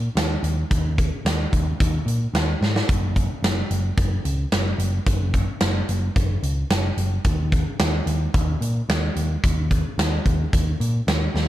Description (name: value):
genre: rock, shoegaze and dream pop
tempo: 110 BPM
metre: 4/4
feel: straight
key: unclear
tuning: A4 = 440 Hz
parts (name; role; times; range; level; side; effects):
- hollow-body short-scale picked electric bass; bass; 0.0-11.5 s; F#1 to A#2; -22 LUFS; equal; none
- big rock drum kit; drums; 0.2-11.5 s; hi-hat, kick drum, snare drum; -22 LUFS; equal; none
room: little or no reverb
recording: dark, warm production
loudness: -20 LUFS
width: side -14 dB against mid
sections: 0.0-11.5 A section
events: drum fill 2.6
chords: none